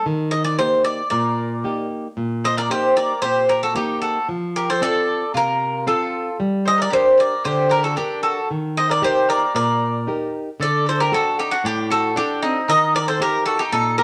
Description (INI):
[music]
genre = greek folk, Greek bouzouki band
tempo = 114 BPM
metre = 4/4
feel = straight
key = unclear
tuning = A4 = 440 Hz
[part]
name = Greek bouzouki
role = melody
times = 0.0-14.0 s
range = Eb4 to Eb5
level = -21 LUFS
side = equal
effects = none
[part]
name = flamenco guitar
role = accompaniment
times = 0.1-14.0 s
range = A2 to Bb4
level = -27 LUFS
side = equal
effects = none
[part]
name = mandolin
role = second line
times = 1.1-14.0 s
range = C4 to C5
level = -27 LUFS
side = equal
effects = none
[sound]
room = moderate studio reverb, RT60 0.8 s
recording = none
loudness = -20 LUFS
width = mono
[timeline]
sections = 0.0-10.6 A section; 10.6-14.0 B section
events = none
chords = 0.1 Eb; 4.3 F; 6.4 Gm; 8.5 Eb; 10.6 D; 12.7 Eb